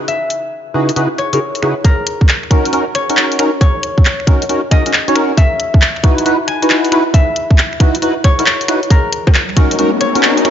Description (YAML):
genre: UK garage, two-step garage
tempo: 136 BPM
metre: 4/4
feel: swing 66% on 16ths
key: unclear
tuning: A4 = 440 Hz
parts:
  - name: concert harp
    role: melody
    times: 0.0-10.5 s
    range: A#4 to G#5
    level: -20 LUFS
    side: left 3 dB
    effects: dub echo
  - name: garage drum kit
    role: drums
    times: 0.1-10.5 s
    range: bongos, finger snaps, handclaps, hi-hat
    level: -16 LUFS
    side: left 1 dB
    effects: none
  - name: percussive organ stab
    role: stabs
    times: 0.7-10.5 s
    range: C#3 to C#5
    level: -16 LUFS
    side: equal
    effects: ensemble chorus
  - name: electronic kick drum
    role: drums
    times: 1.8-9.7 s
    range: none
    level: -11 LUFS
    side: equal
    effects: none
  - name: riser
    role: sound effects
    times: 9.3-10.5 s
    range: none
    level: -19 LUFS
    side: left 3 dB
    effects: none
room: light reverb, digital ambience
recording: nothing above 7.5 kHz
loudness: -11 LUFS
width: side -9 dB against mid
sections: 0.0-1.8 A section; 1.8-10.5 B section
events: build-up 1.8-10.5; riser 9.3-10.5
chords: 0.0 C#m11; 1.8 D#m7; 5.4 Emaj13/D#; 8.9 D#m7